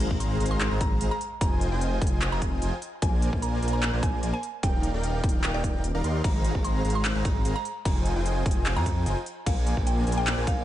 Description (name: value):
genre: future bass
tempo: 149 BPM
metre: 4/4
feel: half-time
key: unclear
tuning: A4 = 444 Hz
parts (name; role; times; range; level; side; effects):
- mallet-like synth pluck; melody; 0.0-10.6 s; D5 to C6; -36 LUFS; right 1 dB; chorus, phaser, sidechain pumping, digital delay
- airy dreamy lead; arpeggios; 0.0-10.6 s; G5 to C6; -39 LUFS; equal; chorus, cassette tape, sidechain pumping, dub echo
- dense compressed supersaw; riff; 0.0-10.6 s; Ab3 to C6; -32 LUFS; equal; cassette tape, sidechain pumping
- wide detuned saw bass; bass; 0.0-10.6 s; Eb1 to F2; -27 LUFS; equal; chorus, sidechain pumping
- big-room dance drum kit; drums; 0.0-10.6 s; crash cymbal, handclaps, hi-hat; -33 LUFS; equal; none
- impact; sound effects; 0.0-1.4 s; none; -38 LUFS; equal; none
- electronic kick drum; drums; 0.1-10.6 s; none; -27 LUFS; equal; none
room: digital ambience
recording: dark, warm production, nothing above 10.7 kHz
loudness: -24 LUFS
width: side -13 dB against mid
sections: 0.0-10.6 A section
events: impact 0.0-1.4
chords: 0.0 Ab69; 1.4 Fm9; 2.8 Bb9; 4.6 Ebmaj9; 6.2 Ab69; 7.9 Fm9; 9.3 Bb9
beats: 0.20 0.61 1.01 | 1.41 1.81 2.22 2.62 | 3.02 3.42 3.83 4.23 | 4.63 5.04 5.44 5.84 | 6.24 6.65 7.05 7.45 | 7.85 8.26 8.66 9.06 | 9.46 9.87 10.27